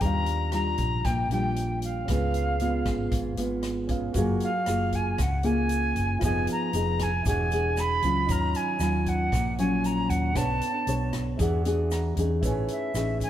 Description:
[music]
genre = bossa nova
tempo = 116 BPM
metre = 4/4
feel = straight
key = F# major from 4.2 s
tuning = A4 = 441 Hz
[part]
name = jazz flute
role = melody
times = 0.0-13.3 s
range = E5 to B5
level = -29 LUFS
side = right 1 dB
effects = none
[part]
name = nylon-string guitar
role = accompaniment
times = 0.0-13.3 s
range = Ab2 to C#5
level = -29 LUFS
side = left 1 dB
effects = none
[part]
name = warm concert grand piano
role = accompaniment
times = 0.0-13.3 s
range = Db4 to E#6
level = -37 LUFS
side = right 4 dB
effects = none
[part]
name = hollow-body short-scale fingered electric bass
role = bass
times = 0.0-13.3 s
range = E1 to E2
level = -28 LUFS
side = equal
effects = none
[part]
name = swinging big-band drum kit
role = drums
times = 0.0-13.3 s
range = hi-hat, kick drum, rim click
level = -33 LUFS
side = equal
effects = none
[part]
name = tube shaker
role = percussion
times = 4.2-13.3 s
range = none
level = -46 LUFS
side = right 5 dB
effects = none
[sound]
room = light reverb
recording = heard from further back in the room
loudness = -24 LUFS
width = side -11 dB against mid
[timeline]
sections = 0.0-4.2 A section; 4.2-13.3 B section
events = grand piano fill 11.4-12.4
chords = 0.0 Ebmaj9; 2.1 Db7; 4.2 F#maj9; 6.2 Fm7b5; 7.3 E9; 8.3 D#m9; 10.4 Bm9; 11.4 E9; 12.4 Amaj9#11

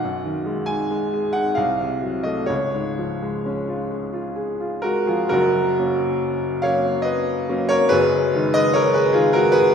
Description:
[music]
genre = classical, romantic nocturne for solo piano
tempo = 61-76 BPM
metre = 3/4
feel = rubato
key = F# major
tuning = A4 = 440 Hz
[part]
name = bright upright piano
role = solo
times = 0.0-9.7 s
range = F#1 to G#5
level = -18 LUFS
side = equal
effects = none
[sound]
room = wet concert hall reverb, RT60 2.1 s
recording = heard from further back in the room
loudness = -18 LUFS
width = side -7 dB against mid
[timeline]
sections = 0.0-5.3 A section; 5.3-9.7 B section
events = none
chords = 0.0 G#m7/B; 1.6 F7b9/C; 2.5 C#; 5.3 F#; 7.9 G#m7/F#

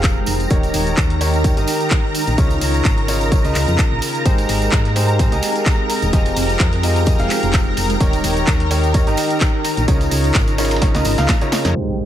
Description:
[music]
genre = piano house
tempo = 128 BPM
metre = 4/4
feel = swing 55% on 16ths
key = unclear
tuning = A4 = 436 Hz
[part]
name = analog string pad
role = sustained chords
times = 0.0-12.1 s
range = Bb4 to Bb5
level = -24 LUFS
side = left 1 dB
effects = ensemble chorus, sidechain pumping
[part]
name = bright baby grand piano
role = riff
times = 0.0-12.1 s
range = Db3 to F5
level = -22 LUFS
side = right 1 dB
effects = sidechain pumping, digital delay
[part]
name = solid FM bass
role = bass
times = 0.0-11.7 s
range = Eb1 to Ab2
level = -20 LUFS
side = equal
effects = sidechain pumping
[part]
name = electronic kick drum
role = drums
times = 0.0-11.4 s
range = none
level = -17 LUFS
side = equal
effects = none
[part]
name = punchy analog drum machine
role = drums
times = 0.0-11.7 s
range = handclaps, hi-hat, snare drum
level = -24 LUFS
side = equal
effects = low-pass filter on hats, low-pass filter on cymbals, low-pass filter on snare
[part]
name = tambourine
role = percussion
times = 0.0-11.7 s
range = none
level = -31 LUFS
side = right 1 dB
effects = none
[part]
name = granular cloud pad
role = texture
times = 0.0-12.1 s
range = Ab3 to G5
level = -26 LUFS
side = equal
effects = built-in reverb, sidechain pumping
[part]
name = dusty soul sampler-style drum kit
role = drums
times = 4.3-11.8 s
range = hi-hat, ride cymbal, snare drum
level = -33 LUFS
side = right 3 dB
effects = none
[part]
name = impact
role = sound effects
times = 11.8-12.1 s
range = none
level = -22 LUFS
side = equal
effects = none
[sound]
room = digital ambience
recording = low-pass filter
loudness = -14 LUFS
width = side -11 dB against mid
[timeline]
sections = 0.0-11.8 A section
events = drum fill 10.8-11.8; impact 11.8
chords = 0.0 Fm9; 0.5 Eb7; 2.4 Db69; 4.3 Abmaj7; 6.1 Fm9; 8.0 Eb7; 9.9 Db69

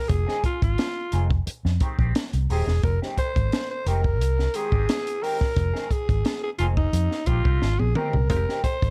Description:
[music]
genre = funk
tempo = 88 BPM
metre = 4/4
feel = straight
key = F minor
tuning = A4 = 441 Hz
[part]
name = breathy alto saxophone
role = melody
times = 0.0-8.9 s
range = Eb4 to C5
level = -30 LUFS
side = equal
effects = none
[part]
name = mellow electric guitar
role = accompaniment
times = 0.1-8.9 s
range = Eb3 to Ab4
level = -36 LUFS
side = equal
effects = wah, lush chorus
[part]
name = vintage muted fingered electric bass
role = bass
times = 0.1-8.9 s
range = Eb1 to F2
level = -25 LUFS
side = equal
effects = none
[part]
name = compact cocktail drum kit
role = drums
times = 0.1-8.9 s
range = hi-hat, kick drum, snare drum, toms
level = -28 LUFS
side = equal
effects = none
[part]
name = muted clav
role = stabs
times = 8.3-8.9 s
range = Ab3 to G4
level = -37 LUFS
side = equal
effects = overdrive
[sound]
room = light reverb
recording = dark, warm production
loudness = -24 LUFS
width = mono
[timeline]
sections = 0.0-8.9 A section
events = drum fill 7.6-8.3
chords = 0.0 Fm9

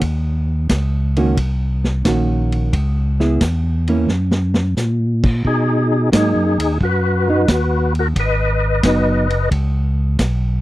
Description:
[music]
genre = soul jazz organ trio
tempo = 88 BPM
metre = 4/4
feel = swing 69% on 8ths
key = unclear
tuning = A4 = 437 Hz
[part]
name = tonewheel organ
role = bass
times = 0.0-10.6 s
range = Gb1 to B2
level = -17 LUFS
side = equal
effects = slow rotary speaker
[part]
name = vintage drum kit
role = drums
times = 0.0-10.4 s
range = crash cymbal, hi-hat, kick drum, ride cymbal, snare drum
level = -20 LUFS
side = equal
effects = none
[part]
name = hollow-body jazz guitar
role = accompaniment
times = 1.2-9.3 s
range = Eb3 to Ab4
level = -18 LUFS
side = right 2 dB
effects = none
[part]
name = percussive tonewheel organ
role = melody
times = 5.5-9.5 s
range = D#4 to Eb5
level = -18 LUFS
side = left 2 dB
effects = slow rotary speaker, overdrive, chorus vibrato
[sound]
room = little or no reverb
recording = dry, close 1970s-style studio recording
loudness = -15 LUFS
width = side -16 dB against mid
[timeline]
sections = 0.0-10.6 A section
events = drum fill 4.1-4.8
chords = 0.0 Ebm7; 2.7 Dbm7; 4.1 Gb; 5.4 Bmaj7; 8.2 Abm7; 9.5 Bsus2

